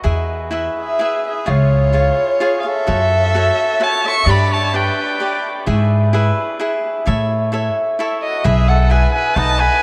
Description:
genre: mexican folk, mariachi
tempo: 129 BPM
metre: 3/4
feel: rubato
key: E major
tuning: A4 = 440 Hz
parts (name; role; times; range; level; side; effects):
- cavaquinho; accompaniment; 0.0-9.8 s; D4 to F#5; -23 LUFS; equal; none
- upright bass; bass; 0.0-9.7 s; B1 to A2; -18 LUFS; equal; none
- dark violin; melody; 0.8-5.5, 8.2-9.8 s; C#5 to C#6; -22 LUFS; equal; none
- clear trumpet; second line; 0.8-5.4, 8.2-9.8 s; E#4 to E5; -27 LUFS; equal; none
room: wet cathedral reverb, RT60 6.2 s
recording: in a vast, echoing space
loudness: -16 LUFS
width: mono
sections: 0.1-9.8 A section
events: none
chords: 0.1 E; 1.5 C#; 2.9 F#m7; 4.3 G; 5.7 E/G#; 7.1 A; 8.5 E/B; 9.4 B7

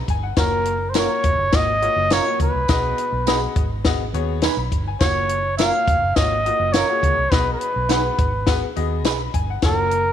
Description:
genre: uptempo 1960s-style soul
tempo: 104 BPM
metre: 4/4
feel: straight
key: unclear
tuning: A4 = 440 Hz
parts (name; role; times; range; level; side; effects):
- bright upright piano; accompaniment; 0.0-10.0 s; B2 to B5; -27 LUFS; left 11 dB; none
- vintage muted fingered electric bass; bass; 0.1-10.1 s; E#1 to D#2; -25 LUFS; right 1 dB; none
- compact cocktail drum kit; drums; 0.1-10.0 s; hi-hat, kick drum, snare drum; -22 LUFS; left 2 dB; none
- breathy trumpet; melody; 0.4-10.1 s; A#4 to E#5; -20 LUFS; right 1 dB; none
- tambourine; percussion; 0.4-9.8 s; none; -33 LUFS; right 16 dB; none
- electric guitar through a small old amp; stabs; 1.0-9.2 s; C#4 to B4; -27 LUFS; right 13 dB; analog chorus
room: light reverb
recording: 1960s-style stereo with parts hard left and right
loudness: -17 LUFS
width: side -10 dB against mid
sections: 0.0-10.1 A section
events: none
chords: 0.4 F#maj7; 2.7 B6; 5.0 F#maj7; 7.3 B6

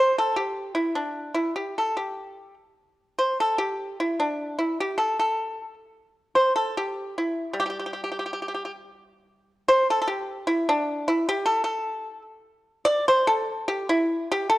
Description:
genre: chinese traditional, Chinese solo plucked strings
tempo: 74 BPM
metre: 2/4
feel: rubato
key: G zhi mode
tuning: A4 = 440 Hz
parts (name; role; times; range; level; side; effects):
- pipa; solo; 0.0-14.6 s; G3 to D5; -22 LUFS; equal; none
room: moderate scoring stage reverb, RT60 1.7 s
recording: worn, warbling old tape, cassette tape, warbly pitch drift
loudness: -23 LUFS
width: side -16 dB against mid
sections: 0.0-9.2 A section; 9.2-14.6 B section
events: none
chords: none

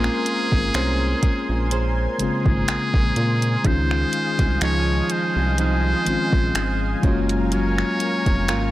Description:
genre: contemporary R&B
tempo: 62 BPM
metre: 4/4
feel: swing 54% on 16ths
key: Db major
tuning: A4 = 440 Hz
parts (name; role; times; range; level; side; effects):
- trumpet with metal mute; melody; 0.0-8.7 s; Ab4 to Db5; -26 LUFS; equal; none
- mellow tine electric piano; accompaniment; 0.0-8.7 s; Db3 to F4; -25 LUFS; left 3 dB; medium stereo tremolo
- lush unison pad; sustained chords; 0.0-8.7 s; Ab4 to C6; -31 LUFS; equal; chorus
- nylon-string guitar; arpeggios; 0.0-8.7 s; F3 to C5; -29 LUFS; right 4 dB; none
- rubbery square bass; bass; 0.0-8.7 s; F1 to Bb2; -23 LUFS; equal; none
- smooth R&B drum kit; drums; 0.0-8.7 s; finger snaps, hi-hat, kick drum; -22 LUFS; equal; soft clipping on snare
room: little or no reverb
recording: blown-out, overdriven recording, overdrive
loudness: -18 LUFS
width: side -16 dB against mid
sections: 0.0-8.7 A section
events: none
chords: 0.0 Bbm9; 3.6 Dbmaj9; 7.0 Gbmaj7

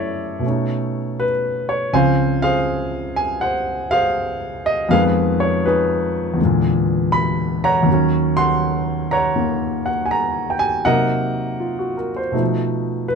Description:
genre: solo jazz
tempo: 81 BPM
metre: 4/4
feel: swing 67% on 8ths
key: unclear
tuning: A4 = 441 Hz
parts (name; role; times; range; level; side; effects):
- warm grand piano; solo; 0.0-13.2 s; Db2 to C6; -17 LUFS; equal; none
room: moderate studio reverb, RT60 0.5 s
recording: dark, warm production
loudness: -17 LUFS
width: side -5 dB against mid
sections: 0.0-13.2 A section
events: none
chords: 0.4 B9; 1.9 Dbmaj7; 4.9 Fm7b5; 6.4 E7#11; 7.9 Ebm7; 10.8 Cm7b5; 12.3 B7#11

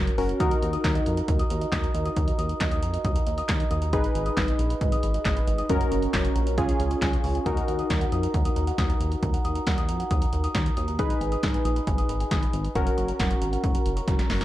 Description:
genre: synth-pop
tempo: 136 BPM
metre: 4/4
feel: straight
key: Eb minor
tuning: A4 = 439 Hz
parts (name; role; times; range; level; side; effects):
- warm analog keys; accompaniment; 0.0-14.4 s; Db4 to Cb5; -29 LUFS; left 1 dB; chorus
- chorused synth bass; bass; 0.0-14.4 s; Gb1 to F2; -28 LUFS; equal; none
- punchy analog drum machine; drums; 0.1-14.4 s; handclaps, hi-hat, kick drum, snare drum; -26 LUFS; equal; none
- kalimba; arpeggios; 0.4-14.4 s; Db5 to Eb6; -32 LUFS; right 2 dB; digital delay
room: light reverb, digital ambience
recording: dark, warm production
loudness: -22 LUFS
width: side -14 dB against mid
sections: 0.0-7.5 A section; 7.5-14.4 B section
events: drum fill 14.1-14.4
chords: 0.4 Ebm; 3.9 Abm; 5.7 Gb; 6.6 Db; 7.5 Ebm; 11.0 Abm; 12.8 Gb

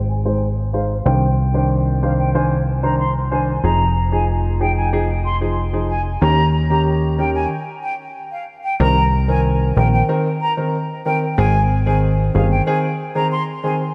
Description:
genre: dancehall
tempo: 93 BPM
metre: 4/4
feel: straight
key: C minor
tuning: A4 = 440 Hz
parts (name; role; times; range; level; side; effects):
- plucky analog bass; bass; 0.0-12.6 s; F1 to Eb2; -20 LUFS; equal; none
- mellow concert flute; melody; 0.1-13.8 s; F5 to C6; -25 LUFS; equal; low-pass filter, delay
- warm baby grand piano; accompaniment; 0.2-13.8 s; Eb3 to C5; -23 LUFS; equal; low-pass filter
room: moderate lush hall reverb, RT60 2.8 s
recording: dreamy mix soaked in reverb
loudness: -18 LUFS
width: mono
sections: 0.0-8.8 A section; 8.8-13.9 B section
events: filter sweep 0.0-8.8; stop 7.5-8.8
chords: 0.0 Ab; 1.1 Cmadd9; 3.6 Fm7; 6.2 Eb7; 8.8 Cm7; 11.4 Ab

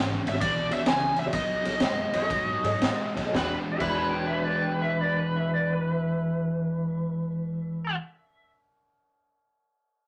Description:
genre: electric blues shuffle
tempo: 109-136 BPM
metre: 4/4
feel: swing 67% on 8ths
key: E mixolydian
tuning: A4 = 440 Hz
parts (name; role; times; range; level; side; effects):
- overdriven semi-hollow guitar; riff; 0.0-8.0 s; E2 to F#4; -32 LUFS; equal; harmonic tremolo
- upright bass; bass; 0.0-7.9 s; E1 to A2; -40 LUFS; equal; none
- biting lead guitar; melody; 0.3-8.0 s; B4 to G#5; -32 LUFS; equal; overdrive
- reed electric piano; accompaniment; 0.3-8.0 s; F#4 to E5; -38 LUFS; equal; fast tremolo
- raw garage drum kit; drums; 0.3-3.9 s; crash cymbal, kick drum, ride cymbal, snare drum; -32 LUFS; equal; none
- clean lap steel guitar; second line; 2.1-8.5 s; A4 to B5; -34 LUFS; equal; none
room: wet studio reverb, RT60 0.5 s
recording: none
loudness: -27 LUFS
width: mono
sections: 0.0-3.3 A section; 3.3-7.7 B section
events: slowing down 0.0-3.3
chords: 0.0 E13; 1.3 B13; 3.3 E9

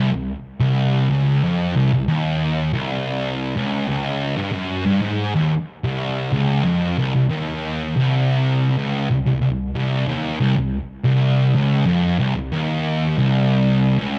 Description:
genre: metal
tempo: 92 BPM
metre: 4/4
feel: straight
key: C phrygian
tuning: A4 = 440 Hz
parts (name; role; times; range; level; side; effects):
- thick fuzz guitar; solo; 0.0-14.2 s; C2 to Ab2; -20 LUFS; equal; distortion, analog delay
room: wet studio reverb, RT60 0.5 s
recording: dark, warm production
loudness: -20 LUFS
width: mono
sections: 0.0-5.5 A section; 5.5-14.2 B section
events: none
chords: none

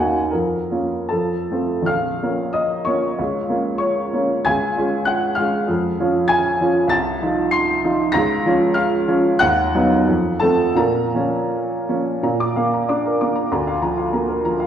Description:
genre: classical, romantic character piece for solo piano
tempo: 74-100 BPM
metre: 2/4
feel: rubato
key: Bb minor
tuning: A4 = 441 Hz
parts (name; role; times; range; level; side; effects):
- clear upright piano; solo; 0.0-14.7 s; Bb1 to C7; -17 LUFS; equal; none
room: wet recital hall reverb, RT60 1.8 s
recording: heard from further back in the room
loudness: -17 LUFS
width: side -9 dB against mid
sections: 0.0-1.9 A section; 1.9-12.2 A section; 12.2-14.7 B section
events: none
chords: 0.3 Bbm/F; 1.1 F; 1.9 Bbm; 3.2 Bbm/Db; 4.5 Db; 5.7 Db/F; 6.9 F7/C; 8.2 Bbm/Db; 9.4 B/D#; 10.1 F; 10.8 Bbm; 12.2 Bb; 13.5 Bb/D

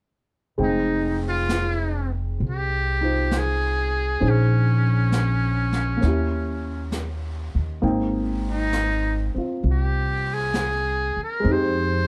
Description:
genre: jazz ballad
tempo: 66 BPM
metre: 4/4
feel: swing 69% on 8ths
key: F minor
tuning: A4 = 440 Hz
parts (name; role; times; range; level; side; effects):
- trumpet with metal mute; melody; 0.6-12.1 s; Db4 to C5; -28 LUFS; equal; none
- warm baby grand piano; accompaniment; 0.6-12.1 s; Ab3 to G5; -30 LUFS; equal; none
- upright bass; bass; 0.6-12.1 s; F1 to F2; -26 LUFS; equal; none
- vintage brush drum kit; drums; 0.6-12.1 s; brushed snare drum, hi-hat, snare drum; -36 LUFS; equal; none
room: light reverb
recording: dark, warm production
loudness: -23 LUFS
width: mono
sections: 0.6-12.1 A section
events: none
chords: 0.6 Fm9; 4.2 Bbm11; 6.0 Eb7b9; 7.8 Abmaj9; 11.4 Fm9

